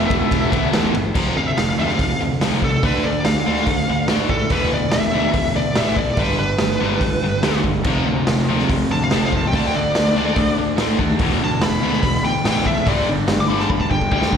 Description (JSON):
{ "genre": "hard rock", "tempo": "144 BPM", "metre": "4/4", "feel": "straight", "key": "E phrygian", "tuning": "A4 = 444 Hz", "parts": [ { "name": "smooth overdriven lead guitar", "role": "melody", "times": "0.0-14.4 s", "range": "A4 to D6", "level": "-23 LUFS", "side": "left 1 dB", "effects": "slapback echo, tape echo" }, { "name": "cranked stack guitar", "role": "riff", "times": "0.0-0.9, 7.8-14.4 s", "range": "E2 to D4", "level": "-26 LUFS", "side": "equal", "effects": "overdrive, slapback echo" }, { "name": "crunchy overdriven guitar", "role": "riff", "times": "0.0-14.4 s", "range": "E2 to D4", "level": "-25 LUFS", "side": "right 11 dB", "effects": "spring reverb" }, { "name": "tight distorted guitar", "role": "riff", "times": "0.0-14.4 s", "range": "E2 to D4", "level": "-24 LUFS", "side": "left 12 dB", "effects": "distortion" }, { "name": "fuzz picked electric bass", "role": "bass", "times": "0.0-14.4 s", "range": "E1 to A2", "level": "-24 LUFS", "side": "equal", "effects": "overdrive" }, { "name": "raw garage drum kit", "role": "drums", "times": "0.0-14.4 s", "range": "crash cymbal, hi-hat, kick drum, ride cymbal, snare drum", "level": "-21 LUFS", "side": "equal", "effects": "none" } ], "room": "light reverb, small room reverb", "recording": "live gig heard through the venue's PA, recital hall reverb", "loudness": "-16 LUFS", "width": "side -7 dB against mid", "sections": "0.0-1.2 A section; 1.2-14.4 B section", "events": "lead electric guitar solo 1.2-14.4; drum fill 13.7-14.4", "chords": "0.0 Em; 1.2 F5; 2.8 Dm; 4.5 E5; 6.2 G; 7.9 F5; 9.5 D5; 11.2 E5; 12.9 G5" }